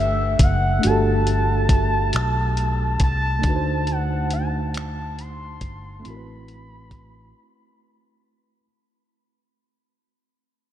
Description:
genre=slow six-eight R&B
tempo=46 BPM (dotted quarters)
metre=6/8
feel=straight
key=A dorian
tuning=A4 = 439 Hz
part: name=gliding portamento lead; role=melody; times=0.0-7.8 s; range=E5 to C6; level=-26 LUFS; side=equal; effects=chorus
part: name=tine electric piano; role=accompaniment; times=0.0-8.7 s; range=A3 to C5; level=-26 LUFS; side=right 1 dB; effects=overdrive, fast stereo tremolo
part: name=fingered electric bass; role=bass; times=0.0-7.3 s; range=F#1 to D2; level=-23 LUFS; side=equal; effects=none
part: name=dusty soul sampler-style drum kit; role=drums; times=0.4-7.1 s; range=finger snaps, hi-hat, kick drum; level=-22 LUFS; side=equal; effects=none
room=moderate cathedral reverb, RT60 7.5 s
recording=dreamy mix soaked in reverb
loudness=-18 LUFS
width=side -12 dB against mid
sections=0.0-8.7 A section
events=fade-out 0.0-8.7; break 7.4-8.7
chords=0.0 Gmaj9; 3.4 D7b9; 6.0 Am69

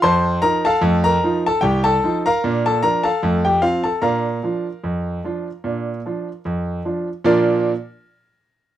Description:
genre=ragtime piano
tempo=75 BPM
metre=2/4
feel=swing 55% on 16ths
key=Bb major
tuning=A4 = 440 Hz
part: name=clear concert grand piano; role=solo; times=0.0-7.7 s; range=C2 to C6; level=-17 LUFS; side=equal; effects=none
room=light reverb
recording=dry, close 1970s-style studio recording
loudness=-17 LUFS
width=side -12 dB against mid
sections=0.0-7.2 A section; 7.2-8.8 B section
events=none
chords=0.0 F7; 2.4 Bb; 3.2 F; 4.0 Bb

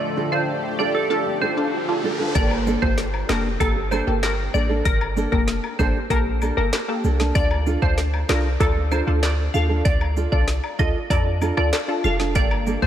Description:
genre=dancehall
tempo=96 BPM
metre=4/4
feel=straight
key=G minor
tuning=A4 = 438 Hz
part: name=glassy wavetable pluck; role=melody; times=0.0-12.9 s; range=A4 to F5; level=-26 LUFS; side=right 1 dB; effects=chorus, analog delay
part: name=lush unison pad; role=sustained chords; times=0.0-2.3, 12.8-12.9 s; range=D3 to A4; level=-30 LUFS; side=left 2 dB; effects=chorus, phaser, sidechain pumping
part: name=riser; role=sound effects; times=0.7-2.4 s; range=none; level=-33 LUFS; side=equal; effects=none
part: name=nylon-string guitar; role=arpeggios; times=0.2-12.9 s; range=Bb3 to A4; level=-28 LUFS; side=right 4 dB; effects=analog delay
part: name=punchy chord stab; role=accompaniment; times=0.3-12.9 s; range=Bb3 to A4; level=-27 LUFS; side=left 1 dB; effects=chorus, phaser
part: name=clean 808-style bass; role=bass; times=2.4-12.9 s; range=F1 to F2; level=-23 LUFS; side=equal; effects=none
part: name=afro-pop drum kit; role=drums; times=2.4-12.9 s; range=handclaps, hi-hat, kick drum, rim click, snare drum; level=-24 LUFS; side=equal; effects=none
part: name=woodblock and cabasa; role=percussion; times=2.5-12.8 s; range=none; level=-36 LUFS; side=left 6 dB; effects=none
room=moderate cathedral reverb, RT60 5.3 s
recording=dreamy mix soaked in reverb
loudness=-19 LUFS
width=side -10 dB against mid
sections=0.0-2.4 A section; 2.4-12.9 B section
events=break 0.0-2.4; riser 0.7-2.4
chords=0.0 Dm; 2.4 Gmadd9; 7.4 Dm; 12.4 Gmadd9

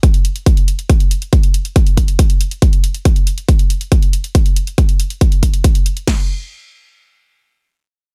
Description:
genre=trance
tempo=139 BPM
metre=4/4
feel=straight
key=none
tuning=none
part: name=big-room dance drum kit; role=drums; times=0.0-6.2 s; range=crash cymbal, kick drum, snare drum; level=-14 LUFS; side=equal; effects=studio reverb
part: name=electronic hi-hat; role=drums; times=0.0-6.1 s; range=none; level=-28 LUFS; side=equal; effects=studio reverb
room=digital ambience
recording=none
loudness=-14 LUFS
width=mono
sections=0.0-6.1 A section; 6.1-8.1 B section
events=none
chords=none

